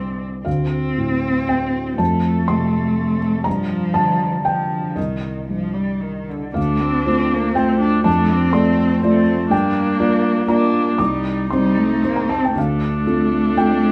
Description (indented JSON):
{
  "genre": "neoclassical piano and strings",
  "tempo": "111-126 BPM",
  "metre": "3/4",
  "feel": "rubato",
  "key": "unclear",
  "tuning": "A4 = 440 Hz",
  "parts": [
    { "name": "warm cello", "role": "second line", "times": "0.0-13.9 s", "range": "D3 to C4", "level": "-24 LUFS", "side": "equal", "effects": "none" },
    { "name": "felt-muted upright piano", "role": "accompaniment", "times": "0.0-13.9 s", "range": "C2 to D6", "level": "-21 LUFS", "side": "equal", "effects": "none" },
    { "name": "warm viola", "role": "accompaniment", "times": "6.6-13.9 s", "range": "A3 to Eb4", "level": "-24 LUFS", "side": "equal", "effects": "none" }
  ],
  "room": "moderate studio reverb, RT60 0.9 s",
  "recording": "band playing live in one room",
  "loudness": "-19 LUFS",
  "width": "mono",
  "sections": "0.0-6.6 A section; 6.6-13.9 A section",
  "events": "none",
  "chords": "0.5 Dm7; 2.0 F; 3.5 Gm7; 5.0 Cm; 6.6 Dm7; 8.1 F6; 9.5 Gm7; 11.0 Cm; 12.6 Dm7"
}